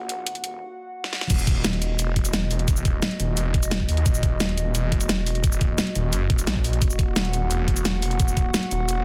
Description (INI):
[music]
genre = dark technical drum and bass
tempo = 174 BPM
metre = 4/4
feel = straight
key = Eb phrygian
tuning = A4 = 439 Hz
[part]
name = dark analog pad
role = sustained chords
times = 0.0-9.0 s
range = Bb3 to Gb5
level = -34 LUFS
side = equal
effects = subtle chorus, sidechain pumping
[part]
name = snarling distorted saw bass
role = bass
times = 0.0-9.0 s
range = Eb1 to Eb2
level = -28 LUFS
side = equal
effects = distortion, overdrive, sidechain pumping
[part]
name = dubstep drum kit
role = drums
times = 0.1-9.0 s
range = crash cymbal, hi-hat, shaker, snare drum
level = -28 LUFS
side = equal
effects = small room ambience
[part]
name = electronic kick drum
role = drums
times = 1.3-8.4 s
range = none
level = -24 LUFS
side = equal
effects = small room ambience
[sound]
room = little or no reverb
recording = dense, heavily limited modern master, high-pass filter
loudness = -23 LUFS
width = mono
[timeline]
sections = 0.0-1.3 A section; 1.3-9.0 B section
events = build-up 0.0-1.3; drum fill 1.0; drop 1.3-9.0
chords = 0.0 Ebm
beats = 0.27 0.61 0.95 | 1.30 1.64 1.99 2.33 | 2.68 3.02 3.37 3.71 | 4.06 4.40 4.75 5.09 | 5.44 5.78 6.13 6.47 | 6.82 7.16 7.51 7.85 | 8.20 8.54 8.89